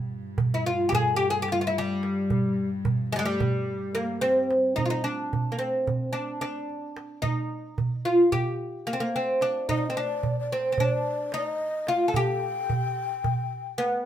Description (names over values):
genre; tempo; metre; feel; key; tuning
Turkish makam ensemble; 219 BPM (eighths); 9/8; straight; G makam hicaz, G makam ussak from 4.8 s; A4 = 439 Hz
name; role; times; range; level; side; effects
warm studio cello section; drone; 0.0-4.8 s; G2; -33 LUFS; left 2 dB; none
darbuka; percussion; 0.4-13.9 s; none; -29 LUFS; right 3 dB; none
oud; melody; 0.5-14.1 s; G3 to A4-30c; -25 LUFS; equal; none
breathy mellow low ney; second line; 9.7-14.1 s; C5 to Ab5; -30 LUFS; left 4 dB; none
room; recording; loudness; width
wet studio reverb, RT60 0.6 s; minimal, uncompressed stereo recording; -24 LUFS; side -10 dB against mid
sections
0.0-4.8 A section; 4.8-14.1 B section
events
none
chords
none